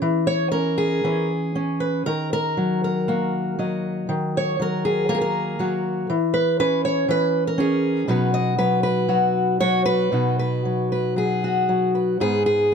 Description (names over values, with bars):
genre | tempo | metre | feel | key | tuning
folk, solo fingerstyle acoustic guitar | 118 BPM | 4/4 | rubato | B major | A4 = 440 Hz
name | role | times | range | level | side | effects
fingerpicked steel-string acoustic guitar | solo | 0.0-12.7 s | G#2 to D#5 | -19 LUFS | equal | none
room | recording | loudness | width
light reverb | close, detailed microphones | -19 LUFS | side -6 dB against mid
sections
0.0-10.1 A section; 10.1-12.7 B section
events
none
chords
0.0 C#m/E; 2.1 D#m; 6.1 C#m/E; 8.1 B; 12.2 G#m